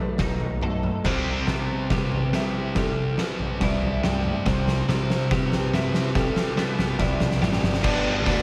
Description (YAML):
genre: post-rock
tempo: 71 BPM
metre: 4/4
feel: straight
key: unclear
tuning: A4 = 442 Hz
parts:
  - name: twelve-string electric guitar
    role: arpeggios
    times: 0.0-7.8 s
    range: C3 to A4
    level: -36 LUFS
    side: equal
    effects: analog chorus, tape echo
  - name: vibraphone with medium hard mallets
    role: arpeggios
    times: 0.0-8.4 s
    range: A4 to D#5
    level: -35 LUFS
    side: equal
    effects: tape echo
  - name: crunchy overdriven guitar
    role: riff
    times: 0.0-8.4 s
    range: G2 to D4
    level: -33 LUFS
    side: equal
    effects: subtle chorus
  - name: growling picked electric bass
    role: bass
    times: 0.2-8.4 s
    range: G1 to C3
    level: -30 LUFS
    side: equal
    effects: overdrive
  - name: oversized low-tuned drum kit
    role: drums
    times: 0.2-8.4 s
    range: crash cymbal, hi-hat, kick drum, snare drum, toms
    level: -28 LUFS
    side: equal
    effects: none
  - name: thick fuzz guitar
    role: riff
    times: 1.1-8.4 s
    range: G2 to D4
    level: -31 LUFS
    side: equal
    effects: distortion
room: moderate lush hall reverb, RT60 2.0 s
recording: dreamy mix soaked in reverb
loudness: -24 LUFS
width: mono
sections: 0.0-7.8 A section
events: build-up 0.0-7.8; drum fill 0.0-7.8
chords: 0.0 B7; 1.1 Cmaj7; 7.8 G